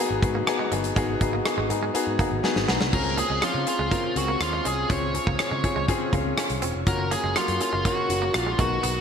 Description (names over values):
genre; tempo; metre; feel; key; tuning
1980s-style pop; 122 BPM; 4/4; straight; Db major; A4 = 440 Hz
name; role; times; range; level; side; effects
clear baby grand piano; accompaniment; 0.0-9.0 s; Bb3 to Db5; -27 LUFS; left 3 dB; shimmer reverb
direct-recorded clean electric guitar; riff; 0.0-8.9 s; F3 to Db4; -34 LUFS; right 6 dB; lush chorus, shimmer reverb
picked electric bass; bass; 0.1-9.0 s; Fb1 to Db3; -30 LUFS; equal; none
big rock drum kit; drums; 0.2-8.9 s; crash cymbal, hi-hat, kick drum, rim click, snare drum; -27 LUFS; equal; none
biting lead guitar; melody; 2.9-9.0 s; F4 to Db5; -28 LUFS; right 1 dB; overdrive, shimmer reverb
room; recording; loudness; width
moderate lush hall reverb, RT60 1.6 s, studio ambience; bright 1980s-style digital production; -22 LUFS; side -7 dB against mid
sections
0.0-2.9 A section; 2.9-9.0 B section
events
drum fill 2.4-2.9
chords
0.0 Abm7; 2.9 Dbmaj7; 6.9 Gbmaj7